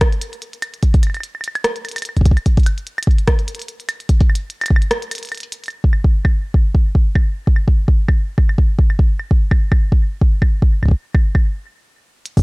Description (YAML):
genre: IDM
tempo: 147 BPM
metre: 4/4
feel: swing 56% on 16ths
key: none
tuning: none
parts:
  - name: electronic kick drum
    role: drums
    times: 0.0-12.4 s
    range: none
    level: -13 LUFS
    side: equal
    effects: none
  - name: glitchy drum kit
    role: drums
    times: 0.0-12.4 s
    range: claves, hi-hat, rim click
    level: -23 LUFS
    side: right 1 dB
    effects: none
room: little or no reverb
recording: dry, gritty hardware recording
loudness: -14 LUFS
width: side -29 dB against mid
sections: 0.0-5.7 A section; 5.7-12.3 B section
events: break 4.9-5.7; stop 11.4-12.3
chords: none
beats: 0.01 0.42 | 0.83 1.24 1.64 2.05 | 2.46 2.87 3.28 3.68 | 4.09 4.50 4.91 5.32 | 5.72 6.13 6.54 6.95 | 7.36 7.77 8.17 8.58 | 8.99 9.40 9.81 10.21 | 10.62 11.03 11.44 11.85 | 12.26